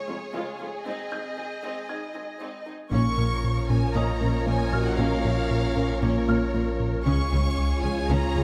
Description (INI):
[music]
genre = cinematic, hybrid orchestral and electronic film score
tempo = 116 BPM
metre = 4/4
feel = straight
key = Bb minor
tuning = A4 = 439 Hz
[part]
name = warm symphonic violin section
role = second line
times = 0.0-8.4 s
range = Ab4 to Eb5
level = -36 LUFS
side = equal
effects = none
[part]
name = sub bass with octave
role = bass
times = 0.0-8.4 s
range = F1 to Db2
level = -32 LUFS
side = equal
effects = none
[part]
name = felt-muted upright piano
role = texture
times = 0.0-8.4 s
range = Gb4 to Ab6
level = -40 LUFS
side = equal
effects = digital delay
[part]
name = warm symphonic viola section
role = accompaniment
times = 0.1-8.4 s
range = F3 to F4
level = -38 LUFS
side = equal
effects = none
[part]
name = glassy wavetable pluck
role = arpeggios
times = 0.1-8.4 s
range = Db3 to Bb4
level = -37 LUFS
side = equal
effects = chorus, digital delay
[part]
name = rich symphonic double bass section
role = bass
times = 0.1-8.4 s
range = F1 to Db2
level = -36 LUFS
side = equal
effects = none
[part]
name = warm symphonic cello section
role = bass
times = 0.1-8.4 s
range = F2 to Db3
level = -35 LUFS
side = equal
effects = none
[part]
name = rich symphonic violin section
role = melody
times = 2.9-8.4 s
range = Db5 to Db6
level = -35 LUFS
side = equal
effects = none
[part]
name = bright trombone section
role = sustained chords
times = 2.9-8.4 s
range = Bb2 to Bb3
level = -37 LUFS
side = equal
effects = none
[part]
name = mellow French horn section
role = sustained chords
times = 2.9-8.4 s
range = Db4 to F4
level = -35 LUFS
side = equal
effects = none
[part]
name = rubbery square bass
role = riff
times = 2.9-8.4 s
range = Db2 to Bb3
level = -30 LUFS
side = equal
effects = none
[sound]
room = moderate scoring stage reverb, RT60 1.8 s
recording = high-pass filter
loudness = -26 LUFS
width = mono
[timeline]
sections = 0.0-2.9 A section; 2.9-8.4 B section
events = build-up 0.0-2.9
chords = 0.0 Db/F; 0.9 Ab; 2.9 Bbm; 7.1 Db